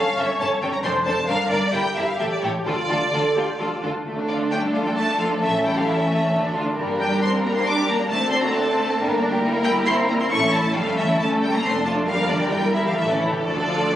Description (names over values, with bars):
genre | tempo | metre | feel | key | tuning
quick classical-period movement for string orchestra | 134 BPM | 3/4 | straight | D minor | A4 = 440 Hz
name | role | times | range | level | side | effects
rich symphonic violin section | melody | 0.0-14.0 s | C#5 to D6 | -25 LUFS | left 1 dB | none
warm symphonic violin section | second line | 0.0-14.0 s | G3 to Bb4 | -24 LUFS | left 1 dB | none
dark symphonic viola section | accompaniment | 0.0-14.0 s | E3 to C#5 | -25 LUFS | equal | none
rich symphonic double bass section | bass | 0.0-13.8 s | F1 to G2 | -31 LUFS | right 1 dB | none
warm symphonic cello section | bass | 0.0-14.0 s | F2 to D4 | -28 LUFS | right 1 dB | none
room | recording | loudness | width
wet scoring stage reverb, RT60 1.7 s | recorded on a phone in the room, club reverb, compression | -19 LUFS | side -12 dB against mid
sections
0.0-4.1 A section; 4.1-14.0 A section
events
none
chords
0.0 A7/G; 0.8 Dm; 1.3 Gm; 1.7 Edim; 2.2 A7(no3); 2.7 Dm; 5.4 A7; 6.3 Dm; 6.8 Gm; 8.1 D7(no3); 9.0 Gm; 9.4 Edim/G; 10.3 A; 10.8 A7/G; 11.6 Dm/F; 12.1 Gm; 12.5 Edim/G; 13.0 A7; 13.4 Dm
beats
0.40 0.84 | 1.29 1.74 2.20 | 2.67 3.13 3.60 | 4.06 4.52 4.97 | 5.42 5.87 6.32 | 6.77 7.22 7.66 | 8.10 8.54 8.98 | 9.42 9.87 10.31 | 10.76 11.20 11.63 | 12.08 12.53 12.98 | 13.45 13.92